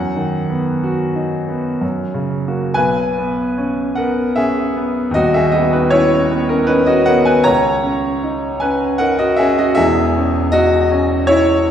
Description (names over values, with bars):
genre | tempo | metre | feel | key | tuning
classical, romantic nocturne for solo piano | 77 BPM | 3/4 | uneven beats, rubato | B major | A4 = 440 Hz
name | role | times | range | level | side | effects
bright grand piano | solo | 0.0-11.7 s | D#1 to A#5 | -14 LUFS | equal | none
room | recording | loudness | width
wet scoring stage reverb, RT60 1.7 s | heard from further back in the room | -13 LUFS | side -9 dB against mid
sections
0.0-2.8 A section; 2.8-11.7 B section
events
none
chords
0.0 B/F#; 1.8 F#; 2.8 E69/B; 5.2 B/D#; 7.5 C#5; 9.8 C#m/E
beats
0.84 1.82 | 2.77 3.59 4.38 | 5.16 5.92 6.69 | 7.46 8.22 9.00 | 9.79 10.55 11.30